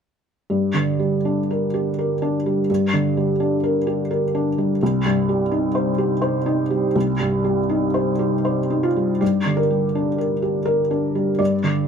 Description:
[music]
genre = neoclassical minimalist piano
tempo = 77-86 BPM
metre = 3/4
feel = rubato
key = G minor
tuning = A4 = 440 Hz
[part]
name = felt-muted upright piano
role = solo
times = 0.5-11.9 s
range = C2 to D5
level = -18 LUFS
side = equal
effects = none
[sound]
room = light reverb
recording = none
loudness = -18 LUFS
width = side -7 dB against mid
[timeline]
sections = 0.5-9.2 A section; 9.2-11.9 B section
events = none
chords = 0.5 Gm; 4.8 Cm; 9.2 Gm

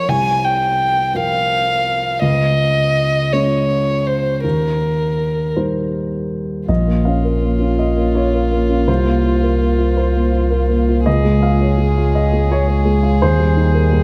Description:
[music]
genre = neoclassical piano and strings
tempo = 55 BPM (dotted quarters)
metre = 6/8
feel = rubato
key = Bb dorian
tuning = A4 = 440 Hz
[part]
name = dark violin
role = melody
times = 0.0-14.0 s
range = F4 to Ab5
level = -22 LUFS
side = equal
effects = none
[part]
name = dark baby grand piano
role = accompaniment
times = 0.0-14.0 s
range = Bb1 to F5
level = -20 LUFS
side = equal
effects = none
[part]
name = dark analog pad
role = sustained chords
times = 6.7-14.0 s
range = Ab3 to G5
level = -29 LUFS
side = equal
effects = none
[part]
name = punchy sub bass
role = bass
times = 6.7-14.0 s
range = Bb1 to Eb2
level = -20 LUFS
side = equal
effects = none
[sound]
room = moderate concert hall reverb, RT60 2.4 s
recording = none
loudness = -16 LUFS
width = mono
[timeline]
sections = 0.0-6.7 A section; 6.7-14.0 B section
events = none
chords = 0.1 Fsus4/C; 2.2 Db; 4.4 Eb; 6.7 Bbm; 8.9 Fsus4/C; 11.1 Db; 13.2 Eb

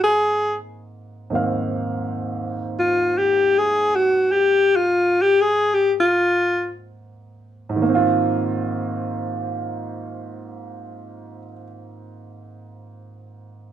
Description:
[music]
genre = jazz ballad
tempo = 30-46 BPM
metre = 4/4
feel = swing 69% on 8ths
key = Ab major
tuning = A4 = 444 Hz
[part]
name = breathy alto saxophone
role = melody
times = 0.0-6.7 s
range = F4 to Ab4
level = -16 LUFS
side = left 1 dB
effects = none
[part]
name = warm grand piano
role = accompaniment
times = 0.0-13.7 s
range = Ab2 to F5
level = -25 LUFS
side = right 3 dB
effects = none
[sound]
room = moderate club reverb, RT60 0.6 s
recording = none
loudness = -18 LUFS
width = side -10 dB against mid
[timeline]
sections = 0.0-7.8 A section; 7.8-13.7 B section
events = slowing down 0.0-7.8; alto saxophone solo 0.0-7.8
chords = 0.0 Ab6

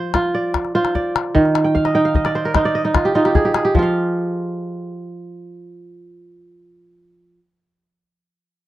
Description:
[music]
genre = west african traditional, West African string and xylophone music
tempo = 100 BPM (dotted quarters)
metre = 12/8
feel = straight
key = unclear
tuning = A4 = 440 Hz
[part]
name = kora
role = arpeggios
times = 0.0-7.5 s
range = Eb3 to G5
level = -17 LUFS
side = right 2 dB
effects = none
[part]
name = calabash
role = percussion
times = 0.1-3.9 s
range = none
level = -20 LUFS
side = left 4 dB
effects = none
[sound]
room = little or no reverb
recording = dry, close 1970s-style studio recording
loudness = -15 LUFS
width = side -14 dB against mid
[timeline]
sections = 0.0-3.8 A section; 3.8-6.2 B section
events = kora fill 1.6-3.8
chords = 0.0 F5; 1.3 Ebmaj13; 3.8 N.C.

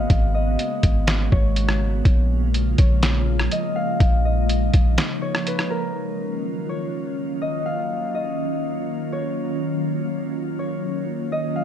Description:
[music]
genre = hip hop, atmospheric cloud-rap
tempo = 123 BPM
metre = 4/4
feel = half-time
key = Eb minor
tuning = A4 = 440 Hz
[part]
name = concert harp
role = melody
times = 0.0-11.6 s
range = Bb4 to F5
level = -28 LUFS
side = left 3 dB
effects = ping-pong delay
[part]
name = glassy FM pad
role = sustained chords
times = 0.0-11.6 s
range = Db3 to Gb4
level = -26 LUFS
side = equal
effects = ensemble chorus, built-in reverb, sidechain pumping
[part]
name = warm 808-style bass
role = bass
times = 0.0-5.0 s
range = Ab1 to Bb1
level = -20 LUFS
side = equal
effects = none
[part]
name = trip hop sampler-style drum kit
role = drums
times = 0.1-5.7 s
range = hi-hat, kick drum, rim click, snare drum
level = -20 LUFS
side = equal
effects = none
[sound]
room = digital ambience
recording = none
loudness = -20 LUFS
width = side -9 dB against mid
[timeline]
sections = 0.0-6.0 A section; 6.0-11.6 B section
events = break 5.0-6.0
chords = 0.0 Abm11; 2.1 Bbm7; 6.0 Ebm9

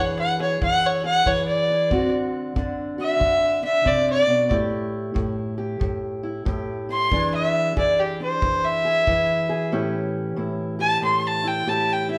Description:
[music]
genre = acoustic country blues, solo or duo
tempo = 92 BPM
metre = 4/4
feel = swing 65% on 8ths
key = unclear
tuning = A4 = 440 Hz
[part]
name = warm fiddle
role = melody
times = 0.0-12.2 s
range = G4 to C6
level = -22 LUFS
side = equal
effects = none
[part]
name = fingerpicked steel-string acoustic guitar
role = accompaniment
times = 0.0-12.2 s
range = A2 to G#4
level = -28 LUFS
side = equal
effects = none
[part]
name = kick drum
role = drums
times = 0.6-9.3 s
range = none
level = -30 LUFS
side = equal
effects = none
[sound]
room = wet large studio reverb, RT60 1.2 s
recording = band playing live in one room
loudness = -22 LUFS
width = mono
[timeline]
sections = 0.0-9.7 A section; 9.7-12.2 A section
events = none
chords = 0.0 E7; 1.9 D7; 4.5 A5; 7.1 E7; 9.7 A7

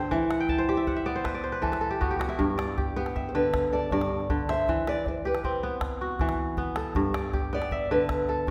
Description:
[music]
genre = west african traditional, West African string and xylophone music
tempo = 105 BPM (dotted quarters)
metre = 12/8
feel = straight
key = unclear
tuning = A4 = 440 Hz
[part]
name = kora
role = arpeggios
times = 0.0-8.5 s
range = G2 to A5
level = -31 LUFS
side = equal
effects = none
[part]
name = fingerpicked old ladder-braced acoustic guitar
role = melody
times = 0.1-8.4 s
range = E4 to E5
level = -31 LUFS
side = equal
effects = none
[part]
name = calabash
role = percussion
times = 0.1-8.5 s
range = none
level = -35 LUFS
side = equal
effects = none
[sound]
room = wet recital hall reverb, RT60 1.3 s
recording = recorded in a church or concert hall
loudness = -28 LUFS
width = mono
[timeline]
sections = 0.0-8.5 A section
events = kora fill 0.3-2.4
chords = 0.1 Em; 2.4 G; 4.7 Em; 7.0 G

